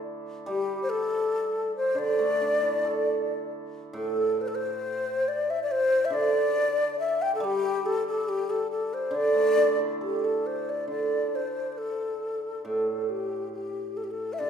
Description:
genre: chinese traditional.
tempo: 69 BPM.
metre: 2/4.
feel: rubato.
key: D shang mode.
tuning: A4 = 440 Hz.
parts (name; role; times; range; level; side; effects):
breathy bright low xiao; melody; 0.0-14.5 s; G4 to G5; -26 LUFS; left 2 dB; none.
hammered dulcimer; accompaniment; 0.0-14.5 s; A2 to A4; -30 LUFS; right 4 dB; none.
room: wet recital hall reverb, RT60 1.6 s.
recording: recorded in a church or concert hall.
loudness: -25 LUFS.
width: side -7 dB against mid.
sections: 0.0-10.9 A section; 10.9-14.5 B section.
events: none.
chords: none.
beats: | 0.47 1.32 | 2.19 3.07 | 3.95 4.84 | 5.70 6.56 | 7.42 8.28 | 9.14 10.02 | 10.90 11.79 | 12.67 13.54 | 14.41.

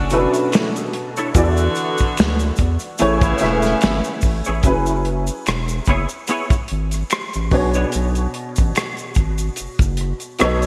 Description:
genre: R&B, neo-soul.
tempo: 73 BPM.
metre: 4/4.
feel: swing 56% on 16ths.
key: B dorian.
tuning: A4 = 440 Hz.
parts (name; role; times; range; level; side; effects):
warm upright piano; accompaniment; 0.0-10.7 s; B2 to E5; -24 LUFS; equal; ensemble chorus.
clear saxophone section; stabs; 0.0-4.2 s; C#3 to F#4; -28 LUFS; equal; digital delay.
round analog bass; bass; 0.0-10.7 s; E1 to E2; -23 LUFS; equal; none.
warm soul drum kit; drums; 0.1-10.7 s; hi-hat, kick drum, rim click, snare drum; -22 LUFS; equal; gated reverb.
tube shaker and finger snaps; percussion; 0.1-10.7 s; none; -35 LUFS; equal; none.
semi-hollow electric guitar; second line; 1.2-7.9 s; B3 to C#5; -28 LUFS; equal; ensemble chorus.
room: moderate lush hall reverb, RT60 2.8 s.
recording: bright 1980s-style digital production, vinyl crackle.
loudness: -19 LUFS.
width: mono.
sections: 0.0-4.6 A section; 4.6-10.7 B section.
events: none.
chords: 0.0 Bm11; 1.3 E7sus4; 3.0 Amaj9; 4.6 F#9sus4; 7.5 Bm69.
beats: 0.53 | 1.35 2.17 2.99 3.81 | 4.64 5.46 6.28 7.10 | 7.92 8.74 9.57 10.39.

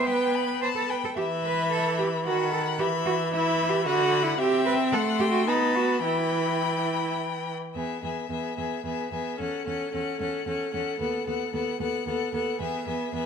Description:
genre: quick classical-period movement for string quartet.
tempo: 111 BPM.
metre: 3/4.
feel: rubato.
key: E minor, E major from 7.8 s.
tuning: A4 = 440 Hz.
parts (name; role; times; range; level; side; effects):
clear violin; melody; 0.0-13.3 s; E5 to C6; -32 LUFS; left 12 dB; none.
rich violin; second line; 0.0-13.3 s; G#4 to B5; -31 LUFS; left 5 dB; none.
rich viola; accompaniment; 0.0-13.3 s; D3 to C#4; -29 LUFS; right 2 dB; none.
rich cello; bass; 0.0-13.2 s; D#2 to C5; -29 LUFS; right 4 dB; none.
room: light reverb.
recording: close, detailed microphones.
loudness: -24 LUFS.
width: side -7 dB against mid.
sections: 0.0-7.8 A section; 7.8-13.3 B section.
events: none.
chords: 0.0 Em/B (rootless); 0.6 A7sus2/B; 1.2 E5; 2.3 B7/D#; 2.8 Em; 3.9 Bm/D; 4.4 C; 4.9 F#dim/A; 5.5 B7; 6.0 Em; 7.8 E; 9.4 F#m7/E; 11.0 B7/D#; 12.6 E.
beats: 0.07 0.63 | 1.18 1.73 2.27 | 2.81 3.34 3.87 | 4.40 4.94 5.49 | 6.05 6.62 7.19 | 7.76 8.31 8.85 | 9.40 9.94 10.47 | 11.01 11.54 12.07 | 12.60 13.14.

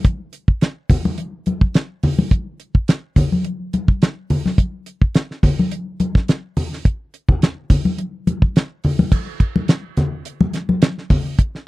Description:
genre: jazz.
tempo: 106 BPM.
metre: 4/4.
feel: swing 54% on 16ths.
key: none.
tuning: none.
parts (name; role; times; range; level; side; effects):
damped 70s drum kit; drums; 0.0-11.6 s; crash cymbal, hi-hat, kick drum, snare drum; -14 LUFS; equal; none.
congas; percussion; 0.9-11.2 s; none; -18 LUFS; left 2 dB; none.
room: little or no reverb.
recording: dry, close 1970s-style studio recording.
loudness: -16 LUFS.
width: side -19 dB against mid.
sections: 0.0-9.1 A section; 9.1-11.7 B section.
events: none.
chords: none.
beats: | 0.05 0.61 1.18 1.75 | 2.31 2.88 3.45 4.01 | 4.58 5.14 5.71 6.28 | 6.85 7.41 7.98 8.55 | 9.12 9.68 10.25 10.82 | 11.39.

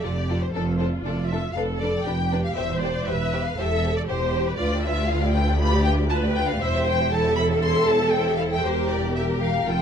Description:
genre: quick classical-period movement for string orchestra.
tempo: 118 BPM.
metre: 4/4.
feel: straight.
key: C major.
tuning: A4 = 439 Hz.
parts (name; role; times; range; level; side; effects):
warm symphonic violin section; melody; 0.0-9.8 s; A4 to C6; -28 LUFS; left 4 dB; none.
warm symphonic violin section; second line; 0.0-9.8 s; D4 to E5; -30 LUFS; left 3 dB; none.
rich studio viola section; accompaniment; 0.0-9.8 s; F4 to C5; -26 LUFS; right 1 dB; none.
rich symphonic double bass section; bass; 0.0-9.8 s; E1 to D2; -27 LUFS; right 2 dB; none.
warm symphonic cello section; bass; 0.0-9.8 s; D2 to F2; -27 LUFS; right 1 dB; none.
room: light reverb.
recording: dark, warm production.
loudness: -20 LUFS.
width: side -7 dB against mid.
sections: 0.0-9.8 A section.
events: none.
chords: 0.0 F; 0.5 Dm/F; 1.5 G7/F; 2.6 C/E; 4.6 G7/D; 6.6 C/E; 8.6 Em7b5.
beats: 0.03 | 0.53 1.04 1.55 2.06 | 2.56 3.06 3.57 4.08 | 4.58 5.09 5.60 6.10 | 6.61 7.12 7.63 8.13 | 8.64 9.16 9.67.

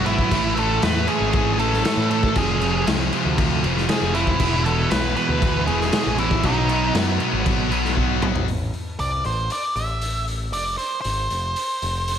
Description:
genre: quiet-loud alternative rock.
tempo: 118 BPM.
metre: 4/4.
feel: straight.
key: A harmonic minor.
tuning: A4 = 442 Hz.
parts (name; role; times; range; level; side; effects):
octave-fuzz lead guitar; melody; 0.0-12.2 s; D#4 to B5; -25 LUFS; right 1 dB; distortion, slapback echo, analog delay.
high-gain distorted guitar; riff; 0.0-8.5 s; E2 to B3; -26 LUFS; left 12 dB; distortion, slapback echo.
sludgy distorted guitar; riff; 0.0-8.5 s; E2 to B3; -25 LUFS; right 10 dB; overdrive.
growling picked electric bass; bass; 0.0-12.2 s; E1 to A2; -25 LUFS; left 1 dB; overdrive.
raw garage drum kit; drums; 0.1-12.2 s; crash cymbal, hi-hat, kick drum, snare drum, toms; -24 LUFS; left 1 dB; none.
room: moderate lush hall reverb, RT60 2.3 s.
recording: big arena sound.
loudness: -18 LUFS.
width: side -8 dB against mid.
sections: 0.0-8.5 A section; 8.5-12.2 B section.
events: drum fill 8.0-8.5.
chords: 0.3 A5; 2.4 Fm; 4.4 E; 6.4 B; 8.5 A5; 10.5 Fm.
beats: | 0.31 0.82 1.33 1.84 | 2.35 2.87 3.38 3.89 | 4.40 4.91 5.42 5.93 | 6.44 6.95 7.46 7.97 | 8.48 8.99 9.51 10.02 | 10.53 11.04 11.56 12.07.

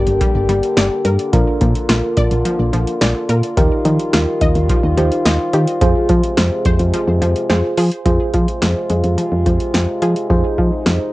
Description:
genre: synth-pop.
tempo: 107 BPM.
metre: 4/4.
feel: straight.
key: unclear.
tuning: A4 = 439 Hz.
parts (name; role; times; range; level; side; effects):
FM electric piano with auto-pan; accompaniment; 0.0-11.1 s; D4 to C5; -22 LUFS; right 2 dB; cassette tape, plate reverb.
mellow French horn section; sustained chords; 0.0-11.1 s; C3 to G4; -21 LUFS; left 1 dB; stereo widening, cassette tape.
wide unison pluck; arpeggios; 0.0-11.1 s; F3 to Eb5; -24 LUFS; left 1 dB; cassette tape, tape echo.
solid FM bass; bass; 0.0-11.0 s; G1 to F3; -16 LUFS; equal; none.
electro analog drum machine; drums; 0.1-11.0 s; hi-hat, kick drum, snare drum; -18 LUFS; equal; cassette tape.
room: moderate small room reverb, RT60 0.5 s.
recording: home recording on cassette.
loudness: -13 LUFS.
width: side -18 dB against mid.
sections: 0.0-8.1 A section; 8.1-11.1 B section.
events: none.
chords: 0.0 Gm; 1.3 Bb; 3.6 Ebadd9; 5.8 Fm.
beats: 0.21 0.77 | 1.33 1.89 2.45 3.01 | 3.57 4.13 4.69 5.25 | 5.82 6.38 6.94 7.50 | 8.06 8.62 9.18 9.74 | 10.30 10.86.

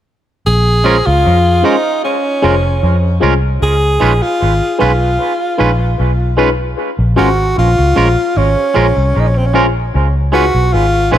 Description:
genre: reggae.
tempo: 76 BPM.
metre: 4/4.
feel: straight.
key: Bb minor.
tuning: A4 = 440 Hz.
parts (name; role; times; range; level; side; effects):
bright tenor saxophone; melody; 0.5-11.2 s; C4 to Ab4; -15 LUFS; equal; tape echo.
vintage muted fingered electric bass; bass; 0.5-11.2 s; F1 to F2; -13 LUFS; equal; none.
mellow FM electric piano; accompaniment; 0.8-11.2 s; Db4 to C5; -19 LUFS; left 4 dB; chorus, phaser, dub echo.
twangy electric guitar; stabs; 0.8-11.2 s; Ab3 to Cb5; -18 LUFS; right 5 dB; dub echo.
room: light reverb, digital ambience.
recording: none.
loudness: -10 LUFS.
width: side -11 dB against mid.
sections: 0.5-6.8 A section; 6.8-11.2 B section.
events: none.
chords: 0.5 Bbm7; 3.6 Db7; 6.8 Bbm7; 9.9 Db7.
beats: | 0.46 1.25 2.04 2.83 | 3.61 4.40 5.19 5.99 | 6.78 7.57 8.36 9.14 | 9.94 10.73.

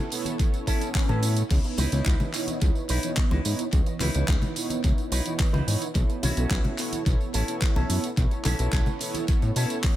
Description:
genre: nu-disco, nu disco.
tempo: 108 BPM.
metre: 4/4.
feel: straight.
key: unclear.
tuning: A4 = 439 Hz.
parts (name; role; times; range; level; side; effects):
mellow synth brass; accompaniment; 0.0-9.9 s; E3 to D#5; -31 LUFS; right 2 dB; chorus, sidechain pumping, tape echo.
electric guitar with an envelope filter; riff; 0.0-9.8 s; C#4 to B4; -35 LUFS; right 1 dB; wide subtle chorus, tape echo.
pop drum kit; drums; 0.1-10.0 s; crash cymbal, handclaps, hi-hat, tambourine; -32 LUFS; right 2 dB; overdrive, tape echo.
congas; percussion; 0.2-9.3 s; none; -32 LUFS; left 2 dB; none.
electronic kick drum; drums; 0.4-10.0 s; none; -24 LUFS; equal; overdrive.
swell; sound effects; 0.5-1.5 s; none; -36 LUFS; left 2 dB; none.
fat analog bass; bass; 1.1-9.7 s; A1 to B2; -25 LUFS; equal; none.
room: digital ambience.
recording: echo-heavy mix.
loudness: -22 LUFS.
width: side -14 dB against mid.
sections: 0.0-10.0 A section.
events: swell 0.5-1.5.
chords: 0.0 B9sus4; 1.5 C#m9; 6.0 B9sus4.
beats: 0.40 0.95 | 1.51 2.06 2.62 3.17 | 3.73 4.28 4.84 5.39 | 5.95 6.51 7.06 7.62 | 8.17 8.73 9.28 9.84.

